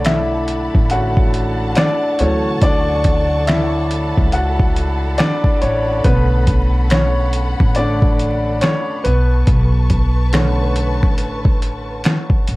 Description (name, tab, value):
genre	lo-fi hip hop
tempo	70 BPM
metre	4/4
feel	swing 58% on 16ths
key	B minor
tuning	A4 = 440 Hz
part	clear upright piano	accompaniment	0.0-12.6 s	D3 to F#5	-19 LUFS	equal	cassette tape, plate reverb
part	warm studio string section	sustained chords	0.0-12.6 s	A4 to C#6	-27 LUFS	equal	plate reverb
part	upright bass	bass	0.0-12.6 s	A1 to D2	-18 LUFS	equal	none
part	dusty soul sampler-style drum kit	drums	0.0-12.6 s	finger snaps, hi-hat, kick drum, snare drum	-16 LUFS	equal	overdrive, vintage 12-bit sampler grit
room	light reverb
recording	vinyl crackle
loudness	-14 LUFS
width	side -21 dB against mid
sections	0.0-12.6 A section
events	upright piano solo 0.0-12.6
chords	0.0 Bm7; 9.0 Bm9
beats	0.05 0.90 1.76 | 2.62 3.48 4.33 5.19 | 6.05 6.90 7.76 8.62 | 9.47 10.33 11.19 12.05